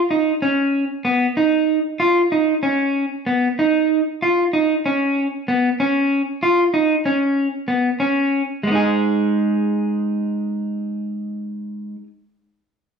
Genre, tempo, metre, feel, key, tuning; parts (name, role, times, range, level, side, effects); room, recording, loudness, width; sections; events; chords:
progressive instrumental, progressive; 190 BPM (eighths); 7/8; straight; A4 = 440 Hz
electric guitar at the edge of break-up; solo; 0.1-12.1 s; G#3 to G#4; -17 LUFS; right 1 dB
wet large studio reverb, RT60 1.0 s; band playing live in one room; -17 LUFS; side -6 dB against mid
0.0-8.6 A section; 8.6-10.8 B section
0.0 Badd9; 8.6 G#5